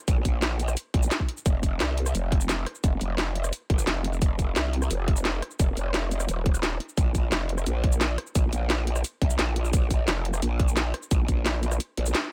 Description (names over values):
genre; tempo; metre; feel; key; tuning
dark technical drum and bass; 174 BPM; 4/4; straight; unclear; A4 = 440 Hz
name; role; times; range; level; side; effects
growl bass; bass; 0.1-12.1 s; Eb1 to C2; -29 LUFS; equal; chorus, overdrive
drum and bass drum kit; drums; 0.1-12.2 s; hi-hat, rim click, shaker, snare drum; -31 LUFS; equal; none
electronic kick drum; drums; 0.1-11.4 s; none; -26 LUFS; equal; none
room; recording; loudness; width
little or no reverb; none; -26 LUFS; mono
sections
0.0-12.3 A section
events
kick drops out 11.8-12.3; band accent 12.1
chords
none